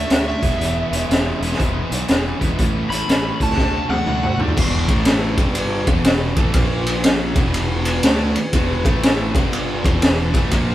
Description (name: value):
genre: blues rock power trio and southern rock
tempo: 121 BPM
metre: 4/4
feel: swing 64% on 8ths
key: E mixolydian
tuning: A4 = 440 Hz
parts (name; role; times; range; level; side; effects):
- overdriven slide guitar; melody; 0.0-4.4 s; E5 to B5; -24 LUFS; equal; none
- thick fuzz guitar; riff; 0.0-10.7 s; E2 to F#4; -23 LUFS; equal; distortion
- fuzz fingered electric bass; bass; 0.0-10.7 s; E1 to D2; -24 LUFS; equal; overdrive
- raw garage drum kit; drums; 0.1-10.7 s; crash cymbal, hi-hat, kick drum, ride cymbal, snare drum, toms; -18 LUFS; equal; none
room: light reverb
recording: band playing live in one room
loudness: -16 LUFS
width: side -14 dB against mid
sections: 0.0-4.6 A section; 4.6-10.7 B section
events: drum fill 3.6-4.6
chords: 0.4 E; 2.6 A; 3.6 D; 4.6 E5; 4.8 A5; 5.3 G5; 5.8 E5; 6.5 A#5; 7.3 E5; 8.8 A5; 9.3 G5; 9.8 E5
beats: 0.11 | 0.60 1.10 1.59 2.09 | 2.59 3.08 3.58 4.07 | 4.57 5.06 5.56 6.05 | 6.55 7.04 7.54 8.03 | 8.53 9.02 9.52 10.02 | 10.51